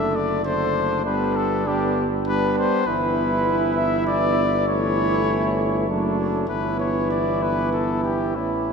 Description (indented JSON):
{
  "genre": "classical, brass quintet",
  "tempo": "99 BPM",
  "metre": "3/4",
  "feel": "rubato",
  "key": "unclear",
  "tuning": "A4 = 440 Hz",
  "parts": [
    { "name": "warm trumpet", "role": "melody", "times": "0.0-8.7 s", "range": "E4 to E5", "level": "-25 LUFS", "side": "left 5 dB", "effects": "none" },
    { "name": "clear flugelhorn", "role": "second line", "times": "0.0-8.7 s", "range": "D4 to E4", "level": "-25 LUFS", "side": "right 5 dB", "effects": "none" },
    { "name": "bright trombone", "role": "accompaniment", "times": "0.0-8.7 s", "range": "D3 to G3", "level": "-28 LUFS", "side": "right 3 dB", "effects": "none" },
    { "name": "clear French horn", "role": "accompaniment", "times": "0.0-8.7 s", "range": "A3 to C#4", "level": "-27 LUFS", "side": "left 3 dB", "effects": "none" },
    { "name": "warm bass trombone", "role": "bass", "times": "0.0-8.7 s", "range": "F#1 to A1", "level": "-27 LUFS", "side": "equal", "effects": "none" }
  ],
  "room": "wet cathedral reverb, RT60 5.6 s",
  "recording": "in a vast, echoing space",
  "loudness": "-19 LUFS",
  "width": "side -5 dB against mid",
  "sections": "0.0-8.7 A section",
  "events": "none",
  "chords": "0.0 D7/F#; 1.1 G; 2.9 Em/G; 4.7 A7/G; 5.9 D/F#; 6.5 Em/G"
}